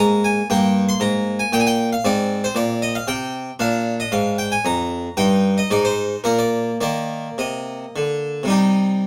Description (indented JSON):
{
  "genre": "classical, baroque-style suite movement for harpsichord",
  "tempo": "103-117 BPM",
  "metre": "3/4",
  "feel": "rubato",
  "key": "Eb major",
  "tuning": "A4 = 437 Hz",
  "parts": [
    { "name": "harpsichord", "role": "solo", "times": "0.0-9.1 s", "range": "F2 to C6", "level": "-20 LUFS", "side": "equal", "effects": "none" }
  ],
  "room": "light reverb",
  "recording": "none",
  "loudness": "-20 LUFS",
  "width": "mono",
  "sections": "0.0-8.5 A section",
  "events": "none",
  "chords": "0.5 Abmaj7sus2/G; 2.0 Abmaj9#11; 3.6 Bb; 5.2 Eb/G; 5.7 Ab; 6.2 N.C.; 6.8 Eb5; 8.5 Cm",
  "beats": "| 0.50 1.01 1.52 | 2.04 2.56 3.08 | 3.59 4.12 4.65 | 5.17 5.70 6.24 | 6.81 7.39 7.95 | 8.52"
}